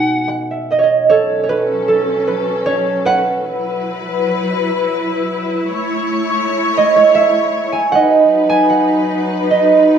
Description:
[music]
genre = celtic folk, Celtic slow air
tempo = 79 BPM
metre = 3/4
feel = uneven beats, rubato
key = unclear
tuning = A4 = 440 Hz
[part]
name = concert harp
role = accompaniment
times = 0.0-10.0 s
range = B2 to G#5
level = -13 LUFS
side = right 4 dB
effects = none
[part]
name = muted studio string section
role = sustained chords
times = 1.1-10.0 s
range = F#3 to C#5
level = -17 LUFS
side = left 2 dB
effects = none
[sound]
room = wet large studio reverb, RT60 1.2 s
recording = band playing live in one room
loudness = -13 LUFS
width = side -7 dB against mid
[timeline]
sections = 0.0-1.1 A section; 1.1-10.0 B section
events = harp fill 0.0-1.1; harp solo 1.1-10.0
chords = 0.0 B; 1.1 F#m; 3.4 Esus2; 5.7 A; 7.9 B

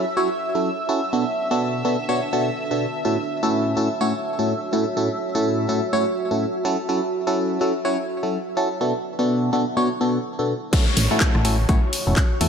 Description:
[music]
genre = piano house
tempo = 125 BPM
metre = 4/4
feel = swing 59% on 16ths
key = A major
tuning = A4 = 440 Hz
[part]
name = analog string pad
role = sustained chords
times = 0.0-12.5 s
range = C#5 to E5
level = -30 LUFS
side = right 1 dB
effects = ensemble chorus, sidechain pumping
[part]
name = barking FM electric piano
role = riff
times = 0.0-12.5 s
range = A2 to C#5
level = -22 LUFS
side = equal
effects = chorus, phaser, sidechain pumping, digital delay
[part]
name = deep dark ambient pad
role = texture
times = 0.0-12.5 s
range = D4 to A5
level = -30 LUFS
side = right 1 dB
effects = chorus, built-in reverb, sidechain pumping
[part]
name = breakbeat sampler-style drum kit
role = drums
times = 10.7-12.5 s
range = hi-hat, snare drum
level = -34 LUFS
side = equal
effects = none
[part]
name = electronic kick drum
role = drums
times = 10.7-12.3 s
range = none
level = -19 LUFS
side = equal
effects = overdrive
[part]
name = house drum kit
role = drums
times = 10.7-12.5 s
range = crash cymbal, handclaps, hi-hat, rim click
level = -25 LUFS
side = left 1 dB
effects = none
[part]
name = downlifter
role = sound effects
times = 10.7-12.5 s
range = none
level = -29 LUFS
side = left 1 dB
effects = none
[part]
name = solid FM bass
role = bass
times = 11.0-12.5 s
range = E1 to E2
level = -20 LUFS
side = equal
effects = sidechain pumping
[sound]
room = moderate lush hall reverb, RT60 1.9 s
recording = none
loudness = -19 LUFS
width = side -7 dB against mid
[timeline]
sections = 0.0-10.7 A section; 10.7-12.5 B section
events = drop 10.7-12.5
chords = 0.0 F#m7; 1.1 Bm7; 3.0 A6; 6.9 F#m7; 8.8 Bm7; 10.7 A6

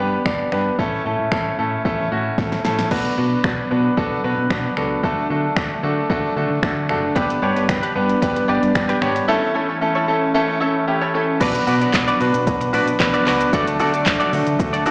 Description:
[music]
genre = dance-pop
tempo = 113 BPM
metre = 4/4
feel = straight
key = B minor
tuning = A4 = 440 Hz
[part]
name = bright concert grand piano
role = accompaniment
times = 0.0-14.9 s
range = A3 to D5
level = -19 LUFS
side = equal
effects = sidechain pumping
[part]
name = vintage muted fingered electric bass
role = bass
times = 0.0-14.9 s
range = F#1 to D3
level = -25 LUFS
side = equal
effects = sidechain pumping
[part]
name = smooth R&B drum kit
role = drums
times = 0.3-14.9 s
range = crash cymbal, finger snaps, handclaps, hi-hat, kick drum, shaker, snare drum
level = -22 LUFS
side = equal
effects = none
[part]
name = airy breathy pad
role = sustained chords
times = 2.9-14.9 s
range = E3 to D4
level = -25 LUFS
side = equal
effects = chorus, sidechain pumping
[part]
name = direct-recorded clean electric guitar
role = riff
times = 7.2-14.9 s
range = D4 to D5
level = -23 LUFS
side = equal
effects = analog chorus
[sound]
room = moderate digital room reverb, RT60 1.2 s, digital ambience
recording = played on a big sound system in a bare room, large studio reverb, small speaker sound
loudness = -16 LUFS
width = side -37 dB against mid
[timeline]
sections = 0.0-2.9 A section; 2.9-11.4 B section; 11.4-14.9 C section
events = drum fill 2.4-2.9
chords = 0.0 G; 0.8 A; 2.9 Bm; 5.0 D; 7.2 G; 9.3 A; 11.4 Bm; 13.5 D

